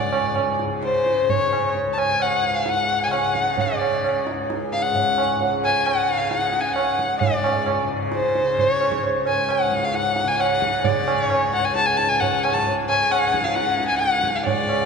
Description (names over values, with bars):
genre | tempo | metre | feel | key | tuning
indian classical, Hindustani | 132 BPM | 4/4 | straight | unclear | A4 = 439 Hz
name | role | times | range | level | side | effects
rich violin | melody | 0.0-14.9 s | B#4 to A5 | -20 LUFS | left 2 dB | none
tanpura | drone | 0.0-14.9 s | C#2 to C#3 | -29 LUFS | left 2 dB | none
tabla | percussion | 0.1-14.8 s | none | -24 LUFS | right 5 dB | none
room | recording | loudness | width
wet cathedral reverb, RT60 4.4 s | recorded in a church or concert hall, nothing above 10.3 kHz | -18 LUFS | side -5 dB against mid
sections
0.0-7.2 A section; 7.2-14.9 B section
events
none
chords
none